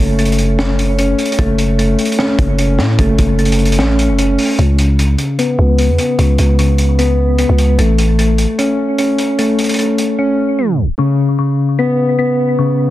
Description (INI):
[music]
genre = hip hop, trap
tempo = 150 BPM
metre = 4/4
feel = half-time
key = unclear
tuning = A4 = 441 Hz
[part]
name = soft electric-piano-like synth keys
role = arpeggios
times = 0.0-12.9 s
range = C#3 to C#4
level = -14 LUFS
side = left 1 dB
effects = chorus, tremolo, low-pass filter, digital delay
[part]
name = growling 808-style bass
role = bass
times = 0.0-8.5 s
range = F#1 to A2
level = -13 LUFS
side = equal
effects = none
[part]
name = crunchy breakbeat drum kit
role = drums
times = 0.2-10.1 s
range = hi-hat, kick drum, snare drum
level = -20 LUFS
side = equal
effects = none
[sound]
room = light reverb, small room ambience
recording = dense, heavily limited modern master, tape stop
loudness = -11 LUFS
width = side -14 dB against mid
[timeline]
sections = 0.0-4.6 A section; 4.6-11.0 B section; 11.0-12.9 A section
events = filter sweep on synth keys 4.6-11.0; drums muted 10.2-11.0; tape stop 10.6-11.0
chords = 0.0 F#m; 4.6 C#7(no3); 7.8 A; 11.0 Bsus2/C#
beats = 0.19 0.59 0.99 | 1.39 1.79 2.19 2.59 | 2.99 3.39 3.79 4.19 | 4.59 4.99 5.39 5.79 | 6.19 6.59 6.99 7.39 | 7.79 8.19 8.59 8.99 | 9.39 9.79 10.19 10.59 | 10.99 11.39 11.79 12.19 | 12.59